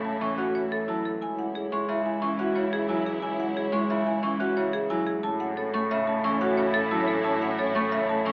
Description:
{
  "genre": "classical, minimalist pattern music",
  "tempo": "179 BPM",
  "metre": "6/4",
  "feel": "straight",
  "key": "A major",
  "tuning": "A4 = 440 Hz",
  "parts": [
    { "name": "marimba with hard mallets", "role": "melody", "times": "0.0-8.3 s", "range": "G#4 to C#6", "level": "-32 LUFS", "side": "equal", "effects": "none" },
    { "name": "warm French horn", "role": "second line", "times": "0.0-8.3 s", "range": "C#4 to E4", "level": "-37 LUFS", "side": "equal", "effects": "none" },
    { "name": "Celtic harp", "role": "accompaniment", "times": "0.0-8.3 s", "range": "C#3 to C#4", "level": "-34 LUFS", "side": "equal", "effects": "none" },
    { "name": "warm studio string section", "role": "sustained chords", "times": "0.0-8.3 s", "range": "E4 to C#5", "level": "-37 LUFS", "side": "equal", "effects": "none" },
    { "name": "vibraphone with medium mallets", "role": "arpeggios", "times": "0.0-8.3 s", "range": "C#4 to E5", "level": "-33 LUFS", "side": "equal", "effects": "none" },
    { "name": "rich cello", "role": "bass", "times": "0.0-8.3 s", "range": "C#2 to A2", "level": "-37 LUFS", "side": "equal", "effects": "none" }
  ],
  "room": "light reverb",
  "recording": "AM radio sound",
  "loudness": "-27 LUFS",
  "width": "mono",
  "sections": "0.0-8.3 A section",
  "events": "none",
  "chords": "0.0 A; 1.2 C#m; 5.2 A",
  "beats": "0.21 0.55 0.88 | 1.22 1.55 1.89 2.22 2.56 2.89 | 3.23 3.56 3.90 4.23 4.57 4.91 | 5.24 5.58 5.91 6.25 6.58 6.92 | 7.25 7.59 7.92 8.26"
}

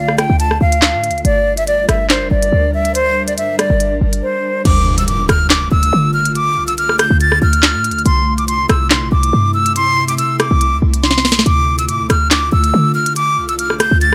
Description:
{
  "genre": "hip hop, drill",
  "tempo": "141 BPM",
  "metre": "4/4",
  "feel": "half-time",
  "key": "D minor",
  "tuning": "A4 = 440 Hz",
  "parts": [
    { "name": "breathy silver concert flute", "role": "melody", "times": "0.0-14.1 s", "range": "C5 to A6", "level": "-18 LUFS", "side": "equal", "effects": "digital delay" },
    { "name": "ethereal airy pad", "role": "sustained chords", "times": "0.0-14.1 s", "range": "C3 to Bb4", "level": "-25 LUFS", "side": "equal", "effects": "ensemble chorus, built-in reverb" },
    { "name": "short 808-style bass", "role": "bass", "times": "0.0-14.1 s", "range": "F1 to D3", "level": "-18 LUFS", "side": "equal", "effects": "none" },
    { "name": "drill drum kit", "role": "drums", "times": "0.1-14.1 s", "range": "crash cymbal, handclaps, hi-hat, rim click, snare drum", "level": "-18 LUFS", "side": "equal", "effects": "none" },
    { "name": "impact", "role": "sound effects", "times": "4.7-6.4 s", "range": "none", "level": "-24 LUFS", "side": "equal", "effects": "none" }
  ],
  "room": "light reverb",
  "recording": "none",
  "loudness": "-14 LUFS",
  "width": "mono",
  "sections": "0.0-4.7 A section; 4.7-14.1 B section",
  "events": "break 4.2-4.7; impact 4.7-6.4; drum fill 11.0-11.5",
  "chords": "0.0 Dm; 1.2 Gm; 4.7 Dm; 8.1 C6; 11.5 Dm",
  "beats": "0.40 0.82 | 1.25 1.67 2.10 2.52 | 2.95 3.38 3.80 4.23 | 4.65 5.08 5.50 5.93 | 6.35 6.78 7.21 7.63 | 8.06 8.48 8.91 9.33 | 9.76 10.18 10.61 11.04 | 11.46 11.89 12.31 12.74 | 13.16 13.59 14.01"
}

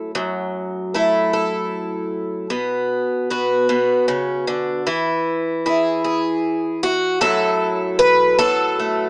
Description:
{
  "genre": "folk, solo fingerstyle acoustic guitar",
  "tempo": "51 BPM (dotted quarters)",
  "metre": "6/8",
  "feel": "straight",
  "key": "F# minor",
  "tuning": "A4 = 440 Hz",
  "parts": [
    { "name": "picked twelve-string acoustic guitar", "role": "solo", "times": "0.0-9.1 s", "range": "F#2 to B4", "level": "-17 LUFS", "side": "equal", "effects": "none" }
  ],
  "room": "light reverb",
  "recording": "small speaker sound",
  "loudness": "-17 LUFS",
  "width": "side -30 dB against mid",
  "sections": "0.0-7.2 A section; 7.2-9.1 B section",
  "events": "none",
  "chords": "0.0 F#m7; 2.5 Bm; 4.9 E; 7.2 F#m7",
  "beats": "| 0.15 1.33 | 2.51 3.68 | 4.86 6.04 | 7.21 8.39"
}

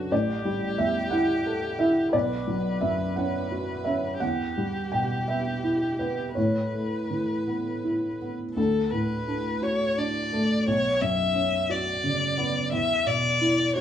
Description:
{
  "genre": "neoclassical piano and strings",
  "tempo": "54-60 BPM (dotted quarters)",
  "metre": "6/8",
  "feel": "rubato",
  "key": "D major",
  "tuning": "A4 = 440 Hz",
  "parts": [
    { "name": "rich violin", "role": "melody", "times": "0.0-13.8 s", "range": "F#4 to E5", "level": "-28 LUFS", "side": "left 2 dB", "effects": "none" },
    { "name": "felt-muted upright piano", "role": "accompaniment", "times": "0.0-13.8 s", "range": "A1 to G5", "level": "-25 LUFS", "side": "right 1 dB", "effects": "none" }
  ],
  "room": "moderate studio reverb, RT60 0.7 s",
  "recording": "band playing live in one room, small room ambience",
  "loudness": "-24 LUFS",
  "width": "side -10 dB against mid",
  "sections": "0.0-8.6 A section; 8.6-13.8 B section",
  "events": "none",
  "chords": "0.1 A7sus4; 2.1 Bmadd9; 4.2 Emadd9; 6.4 Aadd9; 8.6 D; 10.7 Bmadd9; 12.7 E5",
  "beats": "| 0.11 1.12 | 2.14 3.16 | 4.21 5.28 | 6.36 7.47 | 8.57 9.63 | 10.68 11.70 | 12.72 13.76"
}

